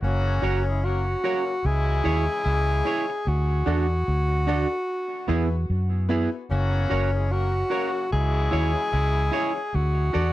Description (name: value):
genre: reggae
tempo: 74 BPM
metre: 4/4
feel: swing 60% on 16ths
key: unclear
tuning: A4 = 440 Hz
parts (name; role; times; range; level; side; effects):
- mellow tenor saxophone; melody; 0.0-10.3 s; C#4 to G#4; -27 LUFS; equal; tape echo
- clear horn section; second line; 0.0-9.5 s; C#3 to A#4; -33 LUFS; left 5 dB; tape echo
- vintage muted fingered electric bass; bass; 0.0-10.3 s; F#1 to F#2; -23 LUFS; equal; none
- clean electric guitar; accompaniment; 0.4-10.3 s; B3 to D5; -30 LUFS; right 6 dB; tape echo
- bright upright piano; stabs; 0.4-10.3 s; B3 to D5; -33 LUFS; left 9 dB; none
room: little or no reverb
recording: dry, close 1970s-style studio recording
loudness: -22 LUFS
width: side -15 dB against mid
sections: 0.0-10.3 A section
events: none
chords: 0.0 F#; 1.6 C#m; 3.3 D; 4.9 E; 6.5 F#; 8.1 C#m; 9.7 D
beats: | 0.02 0.83 1.64 2.45 | 3.26 4.07 4.88 5.69 | 6.50 7.30 8.11 8.92 | 9.73